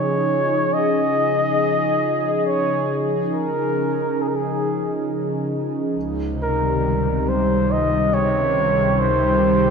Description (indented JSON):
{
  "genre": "ambient",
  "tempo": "69 BPM",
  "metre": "4/4",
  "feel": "straight",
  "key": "Db lydian",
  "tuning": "A4 = 440 Hz",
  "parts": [
    { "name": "mellow flugelhorn", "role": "melody", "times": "0.0-9.7 s", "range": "Ab4 to Eb5", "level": "-21 LUFS", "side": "right 1 dB", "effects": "diffuse ambient delay" },
    { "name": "warm analog pad", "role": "sustained chords", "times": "0.0-9.7 s", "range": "Db2 to Ab4", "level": "-20 LUFS", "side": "left 1 dB", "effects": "chorus" },
    { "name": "felt-muted upright piano", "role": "arpeggios", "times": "0.0-9.7 s", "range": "G3 to G5", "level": "-35 LUFS", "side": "right 1 dB", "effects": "none" }
  ],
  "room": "wet concert hall reverb, RT60 2.2 s",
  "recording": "none",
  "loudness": "-18 LUFS",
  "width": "side -6 dB against mid",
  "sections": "0.0-9.7 A section",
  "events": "none",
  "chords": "0.0 Dbadd9; 6.0 Cm/Db"
}